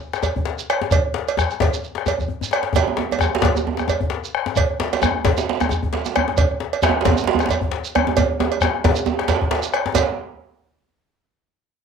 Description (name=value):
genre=west african traditional, West African drum ensemble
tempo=133 BPM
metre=4/4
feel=swing 56% on 16ths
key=none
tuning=none
part: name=bombo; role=percussion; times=0.1-10.2 s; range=none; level=-23 LUFS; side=left 3 dB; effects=none
part: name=djembe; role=percussion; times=0.1-10.2 s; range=none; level=-24 LUFS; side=left 7 dB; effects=none
part: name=shekere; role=percussion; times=0.1-10.2 s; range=none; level=-26 LUFS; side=right 1 dB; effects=none
part: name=cowbell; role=percussion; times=0.2-10.2 s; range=none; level=-23 LUFS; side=right 8 dB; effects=none
part: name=djembe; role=percussion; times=2.8-10.2 s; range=none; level=-22 LUFS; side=right 7 dB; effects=none
room=wet studio reverb, RT60 0.6 s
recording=home recording on cassette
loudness=-18 LUFS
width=side -6 dB against mid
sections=0.0-10.0 A section; 10.0-11.7 B section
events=speeding up 0.0-11.7; drum fill 2.2-2.8, 8.2-10.0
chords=none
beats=0.00 0.46 | 0.92 1.38 1.84 2.29 | 2.75 3.21 3.66 4.12 | 4.57 5.02 5.47 5.93 | 6.38 6.83 7.28 7.73 | 8.17 8.62 9.07 9.52 | 9.96